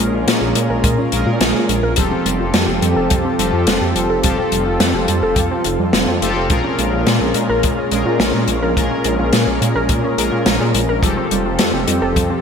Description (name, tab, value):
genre	synthwave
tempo	106 BPM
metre	4/4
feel	straight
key	unclear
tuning	A4 = 439 Hz
part	lush unison pad	sustained chords	0.0-12.4 s	F3 to A4	-22 LUFS	equal	chorus, sidechain pumping, shimmer reverb
part	warbly dusty pluck	arpeggios	0.0-12.4 s	G3 to Bb4	-22 LUFS	right 2 dB	chorus, ping-pong delay, shimmer reverb
part	analog synth brass	stabs	0.0-12.4 s	Bb2 to Bb4	-21 LUFS	left 2 dB	chorus, ping-pong delay, shimmer reverb
part	wide detuned saw bass	bass	0.0-12.3 s	F1 to Bb2	-21 LUFS	equal	chorus, tube saturation, sidechain pumping
part	open jazz drum kit	drums	0.0-12.3 s	hi-hat, snare drum	-20 LUFS	left 2 dB	gated reverb
part	kick drum	drums	0.8-12.3 s	none	-20 LUFS	equal	none
room	wet plate reverb, RT60 2.6 s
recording	bright 1980s-style digital production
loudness	-14 LUFS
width	side -6 dB against mid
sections	0.0-12.4 A section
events	none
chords	0.0 Bbm7; 2.0 Fadd9; 6.5 Bbm7; 11.0 Fadd9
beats	0.28 0.84 1.41 | 1.97 2.54 3.10 3.67 | 4.24 4.80 5.37 5.93 | 6.50 7.07 7.63 8.20 | 8.77 9.33 9.90 10.46 | 11.03 11.60 12.16